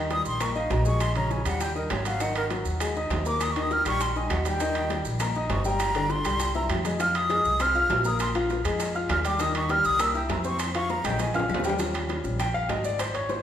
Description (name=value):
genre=Afro-Cuban jazz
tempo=200 BPM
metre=4/4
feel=straight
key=Eb mixolydian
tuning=A4 = 440 Hz
part: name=warm grand piano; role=accompaniment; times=0.0-13.4 s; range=Db3 to F6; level=-29 LUFS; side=left 2 dB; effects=none
part: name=upright bass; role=bass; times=0.0-13.4 s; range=G1 to F2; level=-30 LUFS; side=equal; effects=none
part: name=breathy concert flute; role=melody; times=0.1-11.5 s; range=Bb4 to F6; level=-27 LUFS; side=equal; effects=none
part: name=bongos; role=percussion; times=0.1-13.4 s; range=none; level=-36 LUFS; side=left 4 dB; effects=none
part: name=maracas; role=percussion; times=0.1-13.4 s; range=none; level=-40 LUFS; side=right 6 dB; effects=none
part: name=timbales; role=percussion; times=0.1-13.4 s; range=none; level=-34 LUFS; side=right 5 dB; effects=none
part: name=claves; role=percussion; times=0.4-13.1 s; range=none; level=-41 LUFS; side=right 1 dB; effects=none
room=wet recital hall reverb, RT60 1.6 s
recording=recorded in a church or concert hall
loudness=-23 LUFS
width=side -10 dB against mid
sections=0.0-11.8 A section; 11.8-13.4 A section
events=flute solo 0.0-11.8; drum fill 6.5-7.0, 10.9-11.8; grand piano solo 11.8-13.4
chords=0.0 Eb; 1.0 Bbm7; 1.6 Eb; 2.2 Absus2; 3.4 Eb; 5.8 Gm; 6.4 C; 7.0 Fm7; 8.2 Bb5; 9.4 Eb; 10.0 C7; 10.6 Fm; 11.2 Bb5; 11.8 Eb9